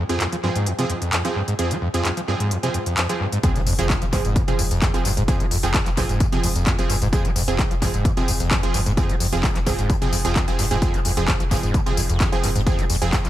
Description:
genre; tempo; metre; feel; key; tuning
driving peak-time techno; 130 BPM; 4/4; straight; F minor; A4 = 435 Hz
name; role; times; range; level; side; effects
screaming distorted acid line; riff; 0.0-13.3 s; F2 to Ab3; -24 LUFS; equal; distortion, wide subtle chorus, sidechain pumping, analog delay
supersaw stab; stabs; 0.1-13.1 s; F3 to Ab4; -26 LUFS; right 3 dB; sidechain pumping, analog delay
techno drum kit; drums; 0.1-13.3 s; handclaps, hi-hat, tambourine; -26 LUFS; left 1 dB; overdrive, analog delay
electronic kick drum; drums; 3.4-13.2 s; none; -21 LUFS; equal; overdrive
impact; sound effects; 3.4-5.3 s; none; -31 LUFS; left 1 dB; none
warm sub bass; bass; 3.6-13.3 s; F1; -26 LUFS; equal; overdrive, sidechain pumping, low-pass filter
room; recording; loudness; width
light reverb, digital ambience; echo-heavy mix; -18 LUFS; side -13 dB against mid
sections
0.0-3.4 A section; 3.4-13.3 B section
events
drop 3.4-13.3; impact 3.4-5.3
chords
0.0 Fm

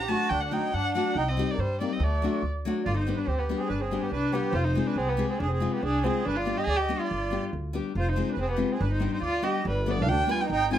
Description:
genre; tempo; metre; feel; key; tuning
balkan folk, Balkan wedding band; 142 BPM; 2/4; swing 54% on 16ths; G phrygian dominant; A4 = 436 Hz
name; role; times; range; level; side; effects
dark violin; melody; 0.0-10.8 s; B3 to A5; -29 LUFS; right 1 dB; none
accordion; second line; 0.0-10.8 s; G3 to Eb5; -33 LUFS; right 4 dB; light tremolo tuning
upright bass; bass; 0.0-10.8 s; F1 to G2; -29 LUFS; equal; none
nylon-string guitar; accompaniment; 0.1-10.8 s; F#3 to C5; -31 LUFS; left 4 dB; none
room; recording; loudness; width
moderate studio reverb, RT60 0.6 s; none; -25 LUFS; side -10 dB against mid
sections
0.0-2.9 A section; 2.9-9.6 B section; 9.6-10.8 C section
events
none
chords
0.0 D; 1.2 Cm; 2.0 D; 2.9 G; 4.6 Fm; 6.2 G; 7.9 Fm; 8.8 G

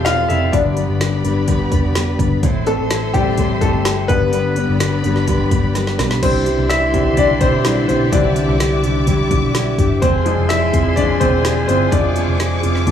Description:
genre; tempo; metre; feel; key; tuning
piano-driven pop; 126 BPM; 4/4; straight; C major; A4 = 436 Hz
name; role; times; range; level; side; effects
clear upright piano; accompaniment; 0.0-12.9 s; D3 to G5; -19 LUFS; left 3 dB; plate reverb
warm studio string section; sustained chords; 0.0-12.9 s; G4 to D6; -25 LUFS; left 2 dB; plate reverb
fingerpicked steel-string acoustic guitar; riff; 0.0-12.9 s; G2 to B4; -22 LUFS; right 5 dB; none
vintage muted picked electric bass; bass; 0.0-12.9 s; E1 to C2; -20 LUFS; left 1 dB; none
deep house drum kit; drums; 0.1-12.9 s; crash cymbal, hi-hat, kick drum, snare drum; -20 LUFS; equal; none
mellow French horn section; second line; 6.2-12.9 s; E3 to Ab4; -25 LUFS; left 7 dB; tape echo, plate reverb
room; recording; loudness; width
moderate studio reverb, RT60 0.8 s; small room ambience; -14 LUFS; side -9 dB against mid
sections
0.0-6.2 A section; 6.2-12.9 B section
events
upright piano solo 0.0-6.2, 6.2-12.9; drum fill 5.8-6.2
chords
0.0 F; 0.5 G; 2.4 Am; 4.1 G; 6.2 Cadd9; 10.0 Fm

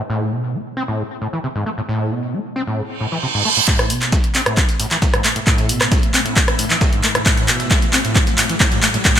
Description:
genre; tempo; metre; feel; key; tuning
driving peak-time techno; 134 BPM; 4/4; straight; A harmonic minor; A4 = 440 Hz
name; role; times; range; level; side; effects
overdriven acid bass; riff; 0.0-9.2 s; G#2 to C4; -22 LUFS; equal; distortion, lush chorus, sidechain pumping, ping-pong delay
downlifter, reverse cymbal and riser; sound effects; 3.0-9.2 s; none; -23 LUFS; right 4 dB; none
swarming drone; drone; 4.9-9.2 s; A2 to A3; -27 LUFS; left 1 dB; built-in reverb, sidechain pumping
dusty soul sampler-style drum kit; drums; 3.7-9.2 s; hi-hat, shaker, snare drum; -30 LUFS; right 2 dB; none
electronic kick drum; drums; 3.7-9.1 s; none; -17 LUFS; equal; none
punchy analog drum machine; drums; 3.7-9.2 s; handclaps, hi-hat, rim click; -17 LUFS; equal; sidechain pumping on hats, high-pass filter on hats, high-pass filter on snare, sidechain pumping on cymbals, high-pass filter on cymbals, high-pass filter on room
room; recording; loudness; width
moderate lush hall reverb, RT60 1.7 s; bright 1980s-style digital production; -15 LUFS; side -9 dB against mid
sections
0.0-3.7 A section; 3.7-9.2 B section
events
reverse cymbal 3.0-3.7; build-up 3.7-9.2; drum fill 3.7-9.2; riser 3.7-9.2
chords
none

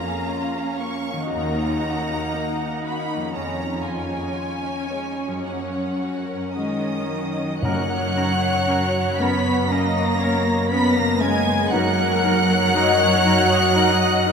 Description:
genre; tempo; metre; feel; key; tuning
cinematic; 59 BPM; 4/4; rubato; F# major; A4 = 440 Hz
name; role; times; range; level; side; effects
clear symphonic violin section; melody; 0.0-14.3 s; F#5 to B6; -27 LUFS; left 1 dB; none
warm symphonic violin section; second line; 0.0-14.3 s; G#3 to B5; -29 LUFS; equal; none
rich symphonic viola section; accompaniment; 0.0-14.3 s; A#3 to D#5; -28 LUFS; equal; none
concert harp; arpeggios; 0.0-14.3 s; E#2 to D#6; -28 LUFS; left 3 dB; none
rich symphonic cello section; bass; 0.0-14.3 s; D#2 to B3; -27 LUFS; right 1 dB; none
silver concert flute; second line; 6.6-14.3 s; D#5 to B5; -28 LUFS; right 2 dB; none
mellow French horn section; sustained chords; 6.6-14.3 s; D#3 to B3; -24 LUFS; left 1 dB; none
dark clarinet; second line; 7.6-14.3 s; C#4 to D#4; -28 LUFS; left 2 dB; none
warm oboe; second line; 7.6-14.3 s; A#4; -31 LUFS; right 3 dB; none
rich chamber double bass section; bass; 7.6-14.3 s; F#2; -26 LUFS; equal; none
timpani; percussion; 7.6-9.1 s; F#2; -31 LUFS; left 1 dB; none
room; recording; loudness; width
wet cathedral reverb, RT60 6.9 s; in a vast, echoing space; -19 LUFS; side -6 dB against mid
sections
0.0-7.6 A section; 7.6-14.3 A section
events
none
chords
0.0 A#m7/E#; 1.3 D#m; 3.3 C#/E#; 5.5 F#; 11.7 D#m/F#

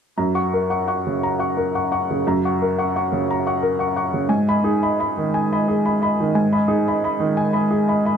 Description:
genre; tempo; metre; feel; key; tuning
neoclassical minimalist piano; 58 BPM (dotted quarters); 6/8; rubato; unclear; A4 = 441 Hz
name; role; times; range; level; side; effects
clear upright piano; solo; 0.2-8.2 s; F#2 to C#6; -18 LUFS; equal; none
room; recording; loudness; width
light reverb; dark, warm production; -18 LUFS; side -7 dB against mid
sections
0.2-8.2 A section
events
none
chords
0.2 F#; 4.3 G#m

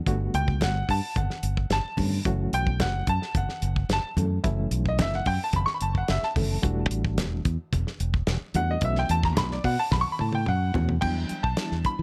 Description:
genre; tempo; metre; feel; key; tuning
electric jazz fusion; 110 BPM; 4/4; straight; E dorian; A4 = 440 Hz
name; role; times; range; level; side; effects
overdriven reed electric piano; accompaniment; 0.1-12.0 s; D3 to A4; -34 LUFS; equal; fast tremolo, plate reverb
fingered electric bass; bass; 0.1-12.0 s; E1 to E3; -29 LUFS; equal; none
damped 70s drum kit; drums; 0.1-12.0 s; crash cymbal, hi-hat, kick drum, snare drum, toms; -32 LUFS; equal; none
congas; percussion; 0.1-10.9 s; none; -35 LUFS; equal; none
clear grand piano; melody; 0.3-12.0 s; D5 to C#6; -31 LUFS; equal; plate reverb, tape echo
room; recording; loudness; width
light reverb; none; -26 LUFS; mono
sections
0.0-11.0 A section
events
grand piano solo 0.0-11.0; drum fill 9.9-11.0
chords
0.1 Gmaj9; 2.3 F#m7; 6.6 Em11; 8.8 B9sus4; 11.0 Em9

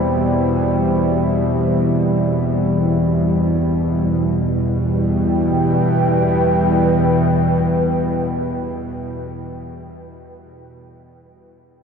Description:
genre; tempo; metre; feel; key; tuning
dark ambient drone; free time; none; none; E minor; A4 = 440 Hz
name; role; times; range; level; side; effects
deep dark ambient pad; sustained chords; 0.0-9.4 s; E2 to G5; -19 LUFS; equal; chorus, built-in reverb
bowed-like drone; drone; 0.0-9.0 s; E2 to B2; -19 LUFS; equal; built-in reverb
room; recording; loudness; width
wet huge ambient reverb, RT60 6.9 s; cassette tape; -15 LUFS; side -6 dB against mid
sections
0.0-4.1 A section; 4.1-8.6 B section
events
none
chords
0.0 C/E; 4.1 Em

